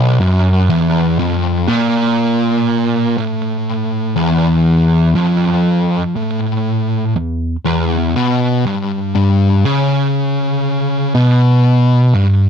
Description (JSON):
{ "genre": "metal", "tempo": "60 BPM", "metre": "4/4", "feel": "straight", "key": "unclear", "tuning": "A4 = 439 Hz", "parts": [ { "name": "fuzz guitar", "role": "solo", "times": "0.0-12.5 s", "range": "B1 to C#3", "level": "-12 LUFS", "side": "equal", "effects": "distortion" } ], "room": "light reverb", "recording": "dry, close 1970s-style studio recording", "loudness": "-12 LUFS", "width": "side -7 dB against mid", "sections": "0.0-12.5 A section", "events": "none", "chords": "none", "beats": "| 0.69 1.68 2.67 3.67 | 4.67 5.66 6.66 7.65 | 8.65 9.64 10.64 11.64" }